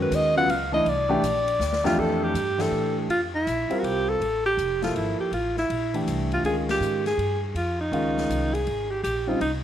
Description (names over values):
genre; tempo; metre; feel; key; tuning
modal jazz; 161 BPM; 3/4; swing 65% on 8ths; unclear; A4 = 438 Hz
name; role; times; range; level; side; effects
warm alto saxophone; melody; 0.0-9.5 s; Eb4 to Gb5; -24 LUFS; equal; none
warm concert grand piano; accompaniment; 0.0-9.4 s; F2 to Bb4; -27 LUFS; equal; none
upright bass; bass; 0.0-9.6 s; F1 to A2; -31 LUFS; equal; none
swinging big-band drum kit; drums; 0.1-9.5 s; crash cymbal, hi-hat, kick drum, ride cymbal, snare drum; -38 LUFS; left 6 dB; none
room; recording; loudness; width
moderate plate reverb, RT60 1.9 s, studio reverb; 1960s-style stereo; -22 LUFS; side -10 dB against mid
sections
0.0-2.0 A section; 2.0-9.6 B section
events
alto saxophone solo 0.0-2.0; drum fill 1.6-2.0; band accent 2.5, 6.6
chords
0.0 Db9sus4; 0.9 C9; 2.0 Fmaj9; 6.4 Dbmaj9